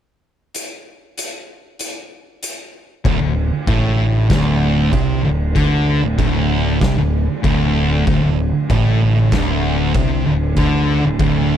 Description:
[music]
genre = stoner and doom metal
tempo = 96 BPM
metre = 4/4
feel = straight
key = unclear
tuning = A4 = 439 Hz
[part]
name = oversized low-tuned drum kit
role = drums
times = 0.5-11.3 s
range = crash cymbal, hi-hat, kick drum, snare drum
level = -22 LUFS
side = equal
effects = none
[part]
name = deep rumbling drone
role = sustained chords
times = 3.6-11.6 s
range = D3 to D4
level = -27 LUFS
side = right 1 dB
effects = none
[part]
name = thick fuzz guitar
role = riff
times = 3.0-11.6 s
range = D2 to D3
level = -19 LUFS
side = left 8 dB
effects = distortion
[part]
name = overdriven picked electric bass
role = bass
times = 3.0-11.6 s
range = D1 to D2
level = -21 LUFS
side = equal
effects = none
[part]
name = thick fuzz guitar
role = riff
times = 3.1-11.6 s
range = D2 to D3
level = -19 LUFS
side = right 6 dB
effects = distortion
[sound]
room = little or no reverb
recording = none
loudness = -14 LUFS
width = side -9 dB against mid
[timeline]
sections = 0.5-3.1 A section; 3.1-11.6 B section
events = none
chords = 0.5 N.C.; 3.1 D5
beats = | 0.55 1.18 1.80 2.43 | 3.05 3.68 4.31 4.93 | 5.56 6.19 6.81 7.44 | 8.06 8.69 9.32 9.94 | 10.57 11.20

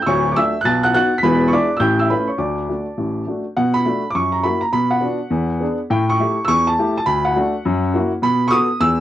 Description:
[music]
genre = jazz, stride piano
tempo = 206 BPM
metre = 4/4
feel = swing 63% on 8ths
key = D major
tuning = A4 = 440 Hz
[part]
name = warm upright piano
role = solo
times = 0.0-9.0 s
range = D1 to B6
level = -16 LUFS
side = equal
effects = cassette tape
[sound]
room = moderate booth ambience, RT60 0.3 s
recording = home recording on cassette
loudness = -16 LUFS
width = side -12 dB against mid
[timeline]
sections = 0.0-3.6 A section; 3.6-9.0 B section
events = none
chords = 0.1 D; 0.6 B7; 1.2 E7; 1.8 A7; 2.4 D; 3.6 Bm7; 4.1 F#7; 4.7 Bm; 5.3 E7; 5.9 A7; 7.1 D; 7.6 F#7; 8.2 B7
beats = | 0.05 0.35 0.64 0.93 | 1.22 1.51 1.81 2.10 | 2.39 2.69 2.98 3.27 | 3.56 3.85 4.15 4.44 | 4.73 5.02 5.31 5.61 | 5.90 6.19 6.48 6.77 | 7.06 7.36 7.65 7.94 | 8.23 8.52 8.81

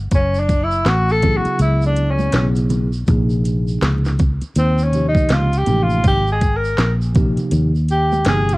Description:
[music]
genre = hip hop, jazz-hop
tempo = 81 BPM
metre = 4/4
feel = swing 61% on 16ths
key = unclear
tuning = A4 = 438 Hz
[part]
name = fingered electric bass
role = bass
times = 0.0-8.6 s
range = F#1 to D#2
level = -17 LUFS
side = equal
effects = none
[part]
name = breathy tenor saxophone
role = melody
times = 0.1-8.6 s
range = B#3 to A#4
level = -19 LUFS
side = equal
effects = none
[part]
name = garage drum kit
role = drums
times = 0.1-8.6 s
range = hi-hat, kick drum, snare drum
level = -18 LUFS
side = equal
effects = none
[part]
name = tube shaker and congas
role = percussion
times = 0.1-8.6 s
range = none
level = -28 LUFS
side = right 3 dB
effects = none
[part]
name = mellow tine electric piano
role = accompaniment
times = 1.2-8.6 s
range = B#2 to G#4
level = -23 LUFS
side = equal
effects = medium stereo tremolo, cassette tape
[sound]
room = little or no reverb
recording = home recording on cassette, vinyl crackle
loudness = -14 LUFS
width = side -21 dB against mid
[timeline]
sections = 0.0-8.6 A section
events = tenor saxophone solo 0.0-8.6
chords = 0.1 F#m7; 3.1 A#m9; 4.6 D#13; 6.0 G#maj9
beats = | 0.12 0.86 1.60 2.34 | 3.08 3.82 4.56 5.30 | 6.04 6.78 7.52 8.26

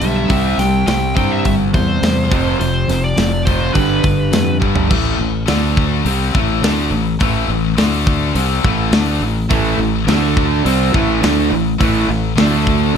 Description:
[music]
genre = hard rock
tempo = 104 BPM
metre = 4/4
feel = straight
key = A minor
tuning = A4 = 440 Hz
[part]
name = nasal lead guitar with a parked wah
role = melody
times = 0.0-4.6 s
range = B4 to G5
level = -22 LUFS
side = equal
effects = overdrive, digital delay
[part]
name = overdriven electric guitar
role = riff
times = 0.0-13.0 s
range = F2 to D4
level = -22 LUFS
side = right 1 dB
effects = none
[part]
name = overdriven semi-hollow guitar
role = riff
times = 0.0-4.9, 9.5-13.0 s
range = F2 to D4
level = -19 LUFS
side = right 5 dB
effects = none
[part]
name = scooped high-gain guitar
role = riff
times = 0.0-13.0 s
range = F2 to D4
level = -21 LUFS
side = left 10 dB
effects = distortion
[part]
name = fingered electric bass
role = bass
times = 0.0-13.0 s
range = F1 to G2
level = -19 LUFS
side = equal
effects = none
[part]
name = tight metal drum kit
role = drums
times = 0.0-12.8 s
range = crash cymbal, hi-hat, kick drum, snare drum, toms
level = -19 LUFS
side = equal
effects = none
[sound]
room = light reverb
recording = none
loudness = -13 LUFS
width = side -7 dB against mid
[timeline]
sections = 0.0-4.9 A section; 4.9-13.0 B section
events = drum fill 4.6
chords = 0.3 C; 2.3 F5; 3.8 G; 4.9 A5; 5.5 D5; 6.1 Am; 7.8 D5; 8.4 Am; 10.1 D5; 10.7 Am; 12.4 D5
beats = | 0.30 0.88 1.45 2.03 | 2.60 3.18 3.75 4.33 | 4.91 5.48 6.06 6.63 | 7.21 7.78 8.36 8.93 | 9.51 10.08 10.66 11.23 | 11.81 12.38 12.96

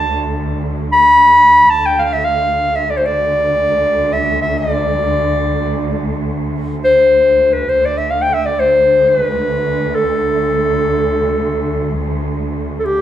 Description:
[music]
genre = Turkish makam ensemble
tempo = free time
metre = none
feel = none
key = D makam huseyni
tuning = A4 = 441 Hz
[part]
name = warm clarinet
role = melody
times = 0.0-13.0 s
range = G4 to B5-29c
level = -12 LUFS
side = left 1 dB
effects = none
[part]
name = warm studio cello section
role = drone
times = 0.0-13.0 s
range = D2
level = -20 LUFS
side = right 1 dB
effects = none
[sound]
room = wet stone room reverb, RT60 1.3 s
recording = band playing live in one room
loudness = -12 LUFS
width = side -11 dB against mid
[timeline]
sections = 0.0-13.0 A section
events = none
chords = none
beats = free time

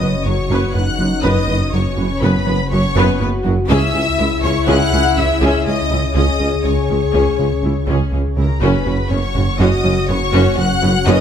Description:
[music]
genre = cinematic, hybrid orchestral and electronic film score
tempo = 122 BPM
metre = 5/4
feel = straight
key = unclear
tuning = A4 = 439 Hz
[part]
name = clear symphonic violin section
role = melody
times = 0.0-11.2 s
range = A#5 to F#6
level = -25 LUFS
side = left 2 dB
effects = none
[part]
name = rich symphonic violin section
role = second line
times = 0.0-11.2 s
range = A#4 to F#5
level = -24 LUFS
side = left 3 dB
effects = none
[part]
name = rich symphonic viola section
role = accompaniment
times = 0.0-11.2 s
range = F#3 to B4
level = -22 LUFS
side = left 2 dB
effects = none
[part]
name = dark French horn section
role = sustained chords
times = 0.0-11.2 s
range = C#4 to B4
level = -22 LUFS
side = left 6 dB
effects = none
[part]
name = warbly tape-like pad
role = sustained chords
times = 0.0-11.2 s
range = C#3 to C#5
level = -25 LUFS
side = left 1 dB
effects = chorus, built-in reverb
[part]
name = rubbery square bass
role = riff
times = 0.0-11.2 s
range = C#2 to F#3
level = -22 LUFS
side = right 1 dB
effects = none
[part]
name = clear studio cello section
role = bass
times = 0.0-11.2 s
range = C#2 to F#2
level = -23 LUFS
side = right 1 dB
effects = none
[part]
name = mellow tuba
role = bass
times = 0.0-11.2 s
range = F#1 to C#2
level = -24 LUFS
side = right 4 dB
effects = none
[part]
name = punchy sub bass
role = bass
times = 0.0-11.2 s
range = F#1 to C#2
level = -24 LUFS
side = equal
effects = none
[part]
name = rich symphonic double bass section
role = bass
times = 0.0-11.2 s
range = F#1 to C#2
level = -23 LUFS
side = right 3 dB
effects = none
[part]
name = impact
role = sound effects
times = 0.0-1.2 s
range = none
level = barely audible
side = none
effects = none
[sound]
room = light reverb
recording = close, detailed microphones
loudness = -13 LUFS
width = side -8 dB against mid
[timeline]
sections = 0.0-11.2 A section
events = impact 0.0-1.2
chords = 0.0 F#sus4; 3.7 C#m; 8.6 F#sus4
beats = 0.26 0.75 | 1.24 1.73 2.22 2.71 3.21 | 3.70 4.19 4.68 5.17 5.67 | 6.16 6.65 7.14 7.63 8.12 | 8.62 9.11 9.60 10.09 10.58 | 11.07

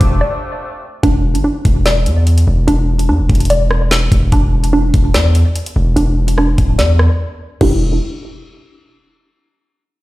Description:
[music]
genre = hip hop, drill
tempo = 146 BPM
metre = 4/4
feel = half-time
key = unclear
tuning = A4 = 440 Hz
[part]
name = clear woodwind section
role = sustained chords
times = 0.0-1.0 s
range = C3 to D4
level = -24 LUFS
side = equal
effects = none
[part]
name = hollow square pluck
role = arpeggios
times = 0.0-7.8 s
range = D4 to D5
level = -18 LUFS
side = right 1 dB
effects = chorus, low-pass filter, digital delay
[part]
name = hard-hitting 808-style bass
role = bass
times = 0.0-8.0 s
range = D1 to E2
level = -13 LUFS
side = equal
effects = none
[part]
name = drill drum kit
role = drums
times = 0.0-7.7 s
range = crash cymbal, hi-hat, kick drum, rim click, snare drum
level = -16 LUFS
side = equal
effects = none
[sound]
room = little or no reverb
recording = played on a big sound system in a bare room, large studio reverb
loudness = -11 LUFS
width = side -18 dB against mid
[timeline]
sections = 0.0-1.0 A section; 1.0-7.6 B section; 7.6-9.3 C section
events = break 0.2-1.0, 7.2-7.6; filter sweep on synth pluck 1.0-7.6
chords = 0.0 F6; 1.0 E7(no3); 7.6 Em7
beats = 0.21 0.62 | 1.03 1.45 1.86 2.27 | 2.68 3.09 3.50 3.91 | 4.32 4.73 5.14 5.55 | 5.97 6.38 6.79 7.20 | 7.61

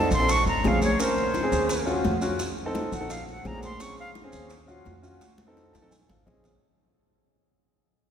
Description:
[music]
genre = Afro-Cuban jazz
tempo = 171 BPM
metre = 4/4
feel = straight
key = Bb minor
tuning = A4 = 440 Hz
[part]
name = silver concert flute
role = melody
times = 0.0-4.1 s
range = C5 to Db6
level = -29 LUFS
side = right 1 dB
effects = none
[part]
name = warm grand piano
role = accompaniment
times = 0.0-6.6 s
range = C4 to A5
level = -28 LUFS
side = equal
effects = none
[part]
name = upright bass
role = bass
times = 0.1-6.6 s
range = Ab1 to F2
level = -30 LUFS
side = equal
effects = none
[part]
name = bongos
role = percussion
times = 0.1-6.5 s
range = none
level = -35 LUFS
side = left 3 dB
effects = none
[part]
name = congas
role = percussion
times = 0.1-6.5 s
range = none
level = -33 LUFS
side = equal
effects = none
[part]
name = maracas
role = percussion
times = 0.1-6.6 s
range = none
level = -37 LUFS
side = right 3 dB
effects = none
[sound]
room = wet cathedral reverb, RT60 6.1 s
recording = recorded in a church or concert hall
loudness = -22 LUFS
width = side -8 dB against mid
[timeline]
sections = 0.0-6.6 A section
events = fade-out 0.0-6.6; flute solo 0.0-6.6; drum fill 5.2-6.6; grand piano fill 5.6-6.6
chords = 0.3 Bbm9; 1.7 Ebm9; 2.4 Adim7; 3.1 Bbm9; 4.5 Ebm9; 5.2 Adim; 5.9 Bbm9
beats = 0.29 0.64 | 0.99 1.34 1.69 2.04 | 2.40 2.75 3.10 3.45 | 3.80 4.16 4.51 4.86 | 5.21 5.56 5.92 6.27

